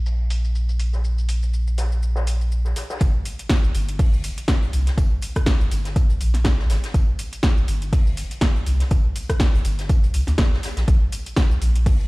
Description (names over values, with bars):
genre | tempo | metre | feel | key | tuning
deep house | 122 BPM | 4/4 | swing 56% on 16ths | unclear | A4 = 440 Hz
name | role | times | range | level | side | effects
warm sub bass | bass | 0.0-12.1 s | G1 to D2 | -21 LUFS | equal | sidechain pumping
deep house drum kit | drums | 0.1-12.1 s | hi-hat, rim click, shaker, snare drum | -28 LUFS | equal | overdrive, studio reverb
natural country drum kit | drums | 0.1-12.0 s | hi-hat, snare drum, tambourine | -36 LUFS | left 2 dB | sidechain pumping on hats, high-pass filter on hats, low-pass filter on hats, studio reverb, high-pass filter on snare, low-pass filter on snare, sidechain pumping on perc, high-pass filter on perc, low-pass filter on perc, high-pass filter on room, low-pass filter on room
electronic kick drum | drums | 3.0-12.0 s | none | -18 LUFS | equal | overdrive, studio reverb
room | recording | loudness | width
studio ambience | played on a big sound system in a bare room, large studio reverb, low-pass filter | -18 LUFS | side -23 dB against mid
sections
0.0-3.0 A section; 3.0-12.1 B section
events
filter sweep 0.0-3.0; drop 3.0-12.1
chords
none